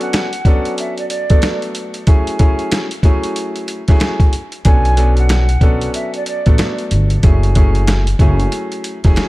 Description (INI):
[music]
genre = hip hop, boom-bap hip-hop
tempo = 93 BPM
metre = 4/4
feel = swing 61% on 16ths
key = F# minor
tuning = A4 = 442 Hz
[part]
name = breathy mellow concert flute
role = melody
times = 0.0-6.8 s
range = D5 to G#5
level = -23 LUFS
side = right 2 dB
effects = high-pass filter, low-pass filter, ping-pong delay
[part]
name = clear upright piano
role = accompaniment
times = 0.0-9.3 s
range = F#3 to A4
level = -21 LUFS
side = equal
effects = high-pass filter, low-pass filter
[part]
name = boom bap sampler-style drum kit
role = drums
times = 0.0-9.3 s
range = hi-hat, kick drum, snare drum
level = -13 LUFS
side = equal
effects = none
[part]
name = finger snap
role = percussion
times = 0.1-9.3 s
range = none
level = -34 LUFS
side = right 4 dB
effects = none
[part]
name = upright bass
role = bass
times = 4.7-9.1 s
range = E1 to B1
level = -14 LUFS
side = equal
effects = none
[sound]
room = small room ambience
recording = dark, warm production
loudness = -12 LUFS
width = side -19 dB against mid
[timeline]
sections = 0.0-9.3 A section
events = break 0.0-4.7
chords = 0.0 Bm9; 2.1 F#m7; 4.7 Bm9; 7.2 F#m7